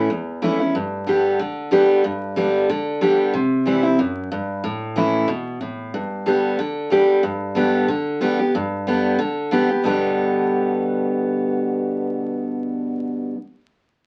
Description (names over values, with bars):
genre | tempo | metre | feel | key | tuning
bluegrass | 185 BPM | 4/4 | swing 54% on 8ths | G major | A4 = 440 Hz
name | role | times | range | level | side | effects
picked steel-string acoustic guitar | solo | 0.0-13.4 s | E2 to G4 | -21 LUFS | equal | none
room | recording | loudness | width
wet studio ambience, RT60 0.5 s | very old 78 rpm record, vinyl crackle | -21 LUFS | mono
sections
0.0-8.5 A section; 8.5-9.8 B section; 9.8-12.4 C section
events
none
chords
0.0 A; 0.7 G; 3.3 C; 4.6 A; 5.9 G